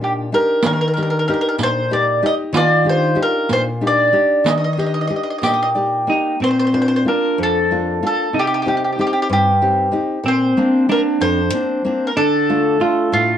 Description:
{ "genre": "italian folk, Italian serenade", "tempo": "63 BPM (dotted quarters)", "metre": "6/8", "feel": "straight", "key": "Eb major, Bb major from 6.4 s", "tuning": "A4 = 441 Hz", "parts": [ { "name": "mandolin", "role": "melody", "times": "0.0-13.4 s", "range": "F4 to Eb5", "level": "-17 LUFS", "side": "equal", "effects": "none" }, { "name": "vintage hollow-body jazz guitar", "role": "second line", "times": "0.0-13.4 s", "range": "C4 to G4", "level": "-19 LUFS", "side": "right 2 dB", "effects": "none" }, { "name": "nylon-string guitar", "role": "accompaniment", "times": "0.0-13.4 s", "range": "F2 to D5", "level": "-20 LUFS", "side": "left 2 dB", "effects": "none" }, { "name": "riq", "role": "percussion", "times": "0.6-5.7 s", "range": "none", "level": "-22 LUFS", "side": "right 4 dB", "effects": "none" } ], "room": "moderate studio reverb, RT60 0.6 s", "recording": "worn, warbling old tape, cassette tape, warbly pitch drift", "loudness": "-14 LUFS", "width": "side -10 dB against mid", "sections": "0.0-6.4 A section; 6.4-13.4 B section", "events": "none", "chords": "0.0 Ebmaj7; 6.4 Bb; 8.4 Cm; 10.3 Bbadd9; 12.2 Dm", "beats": "| 0.65 1.60 | 2.55 3.50 | 4.47 5.44 | 6.42 7.39 | 8.35 9.30 | 10.26 11.21 | 12.16 13.12" }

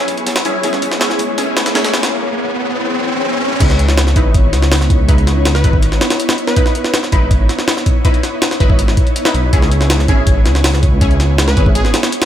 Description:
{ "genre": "drum and bass, jungle", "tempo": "162 BPM", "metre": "4/4", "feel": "straight", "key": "C# minor", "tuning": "A4 = 440 Hz", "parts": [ { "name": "ethereal airy pad", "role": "sustained chords", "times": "0.0-12.3 s", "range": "B3 to C#5", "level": "-21 LUFS", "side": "left 1 dB", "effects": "ensemble chorus, built-in reverb" }, { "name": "orchestra-hit-like synth stab", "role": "stabs", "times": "0.0-11.7 s", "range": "C#4 to B4", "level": "-22 LUFS", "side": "equal", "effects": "built-in reverb, phaser, vintage 12-bit sampler grit, dub echo" }, { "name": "riser", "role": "sound effects", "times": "0.0-3.6 s", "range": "none", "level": "-21 LUFS", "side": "equal", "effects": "none" }, { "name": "crunchy breakbeat drum kit", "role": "drums", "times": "0.1-2.0 s", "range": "hi-hat, snare drum", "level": "-28 LUFS", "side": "right 2 dB", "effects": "none" }, { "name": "jungle sampler-style drum kit", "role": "drums", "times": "0.1-12.3 s", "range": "crash cymbal, hi-hat, kick drum, snare drum", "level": "-14 LUFS", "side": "equal", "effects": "high-pass filter on hats, studio reverb, high-pass filter on kick, high-pass filter on snare, high-pass filter on cymbals" }, { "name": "dark detuned saw bass", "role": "bass", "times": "3.6-11.9 s", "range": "G#1 to C#2", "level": "-14 LUFS", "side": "equal", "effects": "tube saturation" }, { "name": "plucky unison lead", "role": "melody", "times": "5.5-7.0, 11.5-12.0 s", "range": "G#4 to B4", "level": "-22 LUFS", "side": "right 1 dB", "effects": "vintage 12-bit sampler grit, dub echo" } ], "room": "light reverb", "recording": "none", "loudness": "-11 LUFS", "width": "side -11 dB against mid", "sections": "0.0-3.6 A section; 3.6-12.3 B section", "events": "build-up 0.0-3.6; riser 0.0-3.6; break 2.1-3.6; drop 3.6-12.3", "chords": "0.0 E6; 3.6 C#m9; 9.5 E6", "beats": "0.27 | 0.64 1.01 1.38 1.75 | 2.12 2.49 2.86 3.23 | 3.60 3.98 4.34 4.71 | 5.09 5.46 5.83 6.20 | 6.57 6.94 7.31 7.68 | 8.05 8.42 8.79 9.16 | 9.53 9.90 10.27 10.64 | 11.01 11.38 11.75 12.12" }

